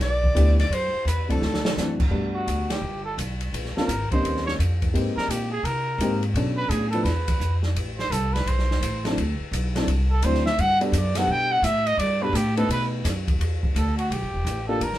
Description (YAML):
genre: jazz, small-group swing and bop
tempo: 170 BPM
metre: 4/4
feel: swing 64% on 8ths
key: unclear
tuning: A4 = 440 Hz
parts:
  - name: breathy soprano saxophone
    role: melody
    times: 0.0-2.0 s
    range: A4 to D5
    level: -28 LUFS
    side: left 1 dB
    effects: none
  - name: breathy trumpet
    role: second line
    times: 0.0-15.0 s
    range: F#4 to G5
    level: -26 LUFS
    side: right 1 dB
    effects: none
  - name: upright bass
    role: bass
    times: 0.0-15.0 s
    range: E1 to C3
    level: -24 LUFS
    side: equal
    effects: none
  - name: open jazz drum kit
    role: drums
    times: 0.0-15.0 s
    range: crash cymbal, hi-hat, kick drum, ride cymbal, snare drum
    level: -29 LUFS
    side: equal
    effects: none
  - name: dark upright piano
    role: accompaniment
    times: 0.3-14.8 s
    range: E3 to C5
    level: -27 LUFS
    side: left 1 dB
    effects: none
room: light reverb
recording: band playing live in one room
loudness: -21 LUFS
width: side -14 dB against mid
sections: 0.0-2.1 A section; 2.1-13.4 B section; 13.4-15.0 B section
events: drum fill 1.4-1.8; trumpet solo 2.1-15.0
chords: 0.0 G6; 0.7 F#m7b5; 1.4 D7; 2.1 Gmaj7; 3.5 Bbm7; 4.2 Eb13; 4.9 Abmaj9; 6.4 Bm9; 7.1 E5; 7.8 Am; 9.2 D9; 10.6 Gmaj7; 12.7 B7; 13.4 Em7